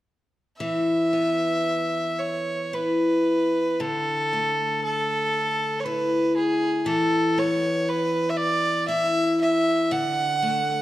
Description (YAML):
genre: celtic folk, Celtic slow air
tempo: 58 BPM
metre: 3/4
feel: uneven beats, rubato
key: unclear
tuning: A4 = 442 Hz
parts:
  - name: clear fiddle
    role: melody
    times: 0.6-10.8 s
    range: G#4 to F#5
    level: -23 LUFS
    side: right 1 dB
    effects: none
  - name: picked steel-string acoustic guitar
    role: accompaniment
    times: 0.6-10.8 s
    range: D3 to E4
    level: -25 LUFS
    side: left 2 dB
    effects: none
room: wet recital hall reverb, RT60 1.4 s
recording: dark, warm production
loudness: -21 LUFS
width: side -15 dB against mid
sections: 0.6-10.8 A section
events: none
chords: 0.6 E5; 3.8 Dsus2; 6.9 Esus4; 9.9 D